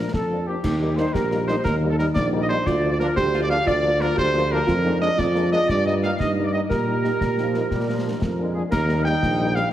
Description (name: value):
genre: military-style march for wind band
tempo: 119 BPM (dotted quarters)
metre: 6/8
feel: straight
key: Bb major, Eb major from 4.7 s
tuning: A4 = 440 Hz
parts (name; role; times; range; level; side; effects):
- mellow cornet; melody; 0.0-9.7 s; G4 to G5; -26 LUFS; equal; none
- clear woodwind section; second line; 0.0-9.6 s; G4 to G5; -28 LUFS; left 1 dB; none
- warm French horn section; accompaniment; 0.0-9.6 s; F3 to F4; -30 LUFS; left 4 dB; none
- clear trombone section; sustained chords; 0.0-9.7 s; Eb3 to Eb4; -33 LUFS; right 2 dB; none
- warm tuba; bass; 0.0-9.6 s; Bb1 to Bb2; -24 LUFS; right 1 dB; none
- concert snare drum, concert bass drum and clash cymbals; drums; 0.1-9.7 s; none; -29 LUFS; left 1 dB; none
- mellow euphonium; second line; 0.6-8.4 s; D4 to G4; -26 LUFS; right 3 dB; none
room: wet recital hall reverb, RT60 1.7 s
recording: heavily compressed radio sound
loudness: -19 LUFS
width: side -12 dB against mid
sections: 0.6-8.7 A section; 8.7-9.7 B section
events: none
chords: 0.0 Bb; 0.6 Eb; 2.7 Bb/D; 4.7 Bb7/F; 5.7 Eb/G; 6.7 Eb/Bb; 7.7 Bb; 8.7 Eb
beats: 0.14 | 0.64 1.15 | 1.65 2.16 | 2.66 3.17 | 3.67 4.18 | 4.68 5.19 | 5.69 6.20 | 6.70 7.21 | 7.71 8.21 | 8.72 9.22